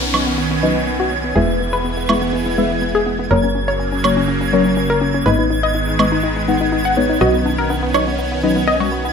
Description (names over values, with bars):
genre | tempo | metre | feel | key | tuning
progressive house | 123 BPM | 4/4 | straight | B major | A4 = 445 Hz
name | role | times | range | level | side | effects
supersaw pad | sustained chords | 0.0-9.1 s | C#3 to C#4 | -22 LUFS | right 1 dB | phaser
analog pluck | arpeggios | 0.0-9.1 s | B3 to F#5 | -21 LUFS | left 2 dB | chorus, dub echo
deep mellow chord stab | stabs | 0.0-9.1 s | F#3 to F#5 | -20 LUFS | left 2 dB | chorus, dub echo
tight sequencer bass | bass | 0.0-9.1 s | E1 to B1 | -24 LUFS | equal | none
downlifter | sound effects | 0.0-3.3 s | none | -27 LUFS | left 1 dB | none
twinkling granular texture | texture | 0.0-9.1 s | G#6 | -26 LUFS | right 3 dB | built-in reverb
woodblock | drums | 0.1-8.0 s | none | -21 LUFS | right 6 dB | none
wide unison pluck | melody | 7.2-9.1 s | C#5 to D#5 | -21 LUFS | moving between left 4 dB and right 9 dB | auto-pan, dub echo
congas | percussion | 7.5-8.9 s | none | -26 LUFS | left 6 dB | overdrive
room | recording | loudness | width
moderate digital room reverb, RT60 0.9 s, digital ambience | none | -14 LUFS | side -6 dB against mid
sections
0.0-9.1 A section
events
filter sweep on synth stab 0.0-9.1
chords
0.0 Badd9; 1.4 E; 3.3 F#; 5.3 G#m; 7.2 Badd9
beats
0.38 0.87 | 1.36 1.85 2.33 2.82 | 3.31 3.80 4.29 4.77 | 5.26 5.75 6.24 6.72 | 7.21 7.70 8.19 8.68